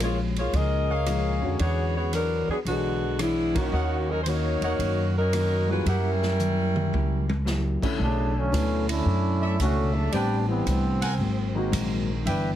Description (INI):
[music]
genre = jazz, big band swing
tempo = 112 BPM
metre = 4/4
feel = swing 68% on 8ths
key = B minor from 8.0 s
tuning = A4 = 440 Hz
[part]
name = mellow saxophone section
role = melody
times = 0.0-7.4 s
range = D3 to Eb5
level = -27 LUFS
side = equal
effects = none
[part]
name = hollow-body jazz guitar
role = accompaniment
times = 0.0-12.6 s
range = G2 to C#5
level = -32 LUFS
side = left 3 dB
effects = none
[part]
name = upright bass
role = bass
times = 0.0-12.6 s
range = G1 to Gb2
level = -26 LUFS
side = equal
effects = none
[part]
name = swinging big-band drum kit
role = drums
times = 0.0-12.4 s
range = crash cymbal, hi-hat, kick drum, ride cymbal, rim click, snare drum, toms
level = -35 LUFS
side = right 1 dB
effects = none
[part]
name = warm trumpet section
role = stabs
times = 0.9-6.1, 9.4-12.5 s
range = G4 to G#5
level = -31 LUFS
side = equal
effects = none
[part]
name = warm baby grand piano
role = accompaniment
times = 1.4-12.2 s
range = D3 to Gb4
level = -31 LUFS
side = left 1 dB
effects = none
[part]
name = mellow trombone section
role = second line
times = 8.0-12.0 s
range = C#3 to F#4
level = -27 LUFS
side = right 1 dB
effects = none
[sound]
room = light reverb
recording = heavily compressed radio sound, multiband compression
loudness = -23 LUFS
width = side -11 dB against mid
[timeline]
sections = 0.0-8.0 A section; 8.0-12.6 B section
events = band accent 3.5; drum fill 6.4-7.5; trombone section solo 8.0-12.6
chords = 0.0 Bbm7; 1.6 E13; 3.7 Ebm7; 5.9 Gb7b9; 8.0 Bm11; 10.1 Am11; 11.2 G#9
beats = 0.00 0.53 1.06 | 1.59 2.13 2.66 3.19 | 3.73 4.26 4.79 5.33 | 5.86 6.39 6.93 7.46 | 7.99 8.53 9.06 9.59 | 10.13 10.66 11.19 11.73 | 12.26